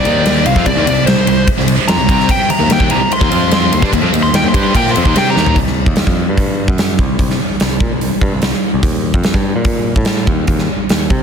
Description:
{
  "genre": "hard rock",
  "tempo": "147 BPM",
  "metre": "4/4",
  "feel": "straight",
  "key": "unclear",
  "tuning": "A4 = 439 Hz",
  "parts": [
    { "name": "bluesy overdriven lead guitar", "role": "melody", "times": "0.0-5.6 s", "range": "C5 to C6", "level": "-17 LUFS", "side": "equal", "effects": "distortion, slapback echo" },
    { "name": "distorted electric guitar", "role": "riff", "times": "0.0-5.6 s", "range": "C3 to C5", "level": "-20 LUFS", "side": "left 13 dB", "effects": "distortion" },
    { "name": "distorted electric guitar", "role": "riff", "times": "0.0-5.5 s", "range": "C3 to C5", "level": "-22 LUFS", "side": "right 1 dB", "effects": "distortion" },
    { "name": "scooped high-gain guitar", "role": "riff", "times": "0.0-5.6 s", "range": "C3 to C5", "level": "-20 LUFS", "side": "right 12 dB", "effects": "distortion" },
    { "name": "picked electric bass", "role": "bass", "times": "0.0-11.2 s", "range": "C2 to C3", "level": "-18 LUFS", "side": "equal", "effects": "none" },
    { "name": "huge arena drum kit", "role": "drums", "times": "0.1-11.2 s", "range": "hi-hat, kick drum, ride cymbal, snare drum, toms", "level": "-14 LUFS", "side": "equal", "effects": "none" }
  ],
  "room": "light reverb",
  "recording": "dense, heavily limited modern master",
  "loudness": "-11 LUFS",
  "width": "side -7 dB against mid",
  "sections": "0.0-5.6 A section; 5.6-11.2 B section",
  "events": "lead electric guitar solo 0.0-5.6; drum fill 5.4",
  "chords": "0.1 Eb5; 0.5 C5; 2.5 Eb5; 3.3 F5; 3.7 Eb5; 5.6 Cmadd11; 6.3 N.C.; 6.7 C5; 8.8 Ebadd9; 9.6 N.C.; 10.0 Eb5"
}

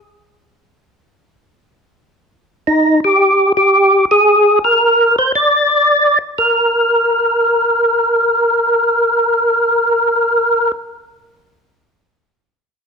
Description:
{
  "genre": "jazz",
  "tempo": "113 BPM",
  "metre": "4/4",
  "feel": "swing 69% on 8ths",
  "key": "unclear",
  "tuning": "A4 = 440 Hz",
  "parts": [
    { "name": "percussive tonewheel organ", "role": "solo", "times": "2.7-10.7 s", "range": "Eb4 to D5", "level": "-11 LUFS", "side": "equal", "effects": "slow rotary speaker, overdrive, chorus vibrato" }
  ],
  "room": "moderate large studio reverb, RT60 1.3 s",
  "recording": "close, detailed microphones",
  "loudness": "-11 LUFS",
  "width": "side -5 dB against mid",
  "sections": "0.0-2.1 A section; 2.1-6.4 B section; 6.4-10.6 C section",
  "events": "none",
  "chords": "none"
}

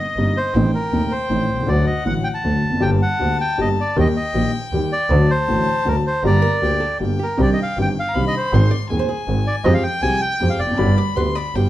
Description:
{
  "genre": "tango",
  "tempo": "158 BPM",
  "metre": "3/4",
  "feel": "rubato",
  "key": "G harmonic minor, C harmonic minor from 7.4 s",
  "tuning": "A4 = 441 Hz",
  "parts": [
    { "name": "bandoneon", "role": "melody", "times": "0.0-11.0 s", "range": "Bb4 to A5", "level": "-22 LUFS", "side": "equal", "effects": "none" },
    { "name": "rich violin", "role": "second line", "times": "0.0-11.7 s", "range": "Eb5 to C6", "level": "-28 LUFS", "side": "left 5 dB", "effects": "none" },
    { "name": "warm grand piano", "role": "accompaniment", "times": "0.2-11.7 s", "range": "Eb1 to Ab4", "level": "-20 LUFS", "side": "left 1 dB", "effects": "none" },
    { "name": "clear double bass", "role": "bass", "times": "0.2-11.7 s", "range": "F1 to F2", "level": "-21 LUFS", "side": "right 2 dB", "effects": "none" },
    { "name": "archtop guitar, miked and amplified", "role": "second line", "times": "6.4-11.7 s", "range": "G4 to D5", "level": "-27 LUFS", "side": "right 6 dB", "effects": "none" }
  ],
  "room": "light reverb",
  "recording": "dark, warm production",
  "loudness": "-16 LUFS",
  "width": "side -14 dB against mid",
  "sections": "0.0-7.4 A section; 7.4-11.7 B section",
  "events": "none",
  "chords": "0.0 Cm7/G; 0.5 Adim; 1.7 D; 2.8 Gm; 4.0 Eb; 5.1 D; 6.2 Gm; 7.4 Cmadd9; 8.5 Ab; 9.7 Fmadd9; 10.8 G"
}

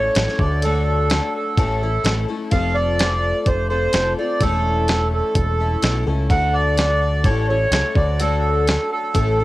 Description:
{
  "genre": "folk rock and heartland rock",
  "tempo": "127 BPM",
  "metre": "4/4",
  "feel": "straight",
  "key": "unclear",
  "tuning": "A4 = 437 Hz",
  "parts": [
    { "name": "accordion", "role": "melody", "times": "0.0-9.4 s", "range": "A4 to F#5", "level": "-21 LUFS", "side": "right 2 dB", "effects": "cassette tape, analog delay" },
    { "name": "picked twelve-string acoustic guitar", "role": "accompaniment", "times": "0.0-9.4 s", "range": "A2 to A4", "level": "-24 LUFS", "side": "left 5 dB", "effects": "cassette tape" },
    { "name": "deep dub picked electric bass", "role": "bass", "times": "0.0-9.4 s", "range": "E1 to D2", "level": "-21 LUFS", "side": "equal", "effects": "none" },
    { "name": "dusty soul sampler-style drum kit", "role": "drums", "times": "0.2-9.3 s", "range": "hi-hat, kick drum, snare drum", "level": "-20 LUFS", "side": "equal", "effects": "none" }
  ],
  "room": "light reverb",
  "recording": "home recording on cassette",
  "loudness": "-16 LUFS",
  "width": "side -17 dB against mid",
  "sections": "0.0-9.4 A section",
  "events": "none",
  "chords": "0.4 D; 1.6 A; 2.5 F; 4.4 A/E; 6.3 D; 7.3 A; 8.0 D"
}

